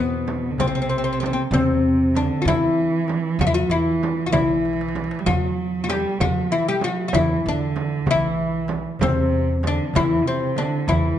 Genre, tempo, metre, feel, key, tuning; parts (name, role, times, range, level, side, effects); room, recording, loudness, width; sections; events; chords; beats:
Arabic maqam ensemble; 64 BPM (dotted quarters); 6/8; straight; E maqam bayati; A4 = 441 Hz
oud; melody; 0.0-11.2 s; B3 to G4; -22 LUFS; left 3 dB
dark cello; second line; 0.0-11.2 s; B2 to G3; -25 LUFS; right 5 dB
upright bass; bass; 0.0-11.1 s; B1 to E2; -26 LUFS; equal
darbuka; percussion; 0.3-11.0 s; -29 LUFS; left 4 dB
frame drum; percussion; 0.3-11.0 s; -28 LUFS; right 5 dB
moderate recital hall reverb, RT60 1.4 s; dark, warm production, nothing above 10.6 kHz; -19 LUFS; side -10 dB against mid
0.0-11.2 A section
drum fill 4.6-5.3
0.58 | 1.52 2.46 | 3.39 4.33 | 5.27 6.20 | 7.14 8.07 | 9.01 9.95 | 10.88